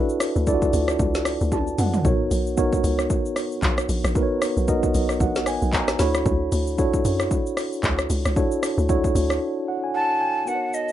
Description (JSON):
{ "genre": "amapiano", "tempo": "114 BPM", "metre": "4/4", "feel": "swing 58% on 16ths", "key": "unclear", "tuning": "A4 = 436 Hz", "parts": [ { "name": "mellow tine electric piano", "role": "accompaniment", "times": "0.0-10.9 s", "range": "B3 to B5", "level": "-23 LUFS", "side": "right 1 dB", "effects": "medium stereo tremolo, plate reverb" }, { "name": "deep house drum kit", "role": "drums", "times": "0.1-10.9 s", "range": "handclaps, hi-hat, kick drum, rim click, shaker, snare drum, toms", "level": "-24 LUFS", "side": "equal", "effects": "none" }, { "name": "hollow log drum bass", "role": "bass", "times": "0.4-9.4 s", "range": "A#1 to F#2", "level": "-24 LUFS", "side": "equal", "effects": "none" }, { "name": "breathy mellow jazz flute", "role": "melody", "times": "9.9-10.9 s", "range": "D#5 to A5", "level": "-22 LUFS", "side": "equal", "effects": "plate reverb, digital delay" } ], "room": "light reverb", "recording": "rough home demo mix, nothing above 10.9 kHz", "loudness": "-20 LUFS", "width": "side -12 dB against mid", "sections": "0.0-10.5 A section", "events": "drop 0.0-10.5; tine electric piano fill 1.3-2.0, 4.7-6.3, 9.4-10.5; drum fill 1.5-2.0; break 9.4-10.5", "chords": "0.0 Dmaj9; 2.0 Bmaj9; 6.0 Dmaj9" }